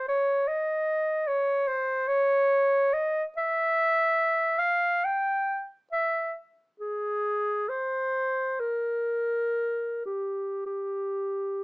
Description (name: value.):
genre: classical, free, expressive piece for unaccompanied clarinet.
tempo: 51-76 BPM.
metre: 4/4.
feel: rubato.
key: unclear.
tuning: A4 = 440 Hz.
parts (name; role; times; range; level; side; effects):
warm clarinet; solo; 0.0-11.6 s; G4 to G5; -24 LUFS; equal; none.
room: light reverb.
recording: small speaker sound.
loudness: -24 LUFS.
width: side -27 dB against mid.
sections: 0.0-11.6 A section.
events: none.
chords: none.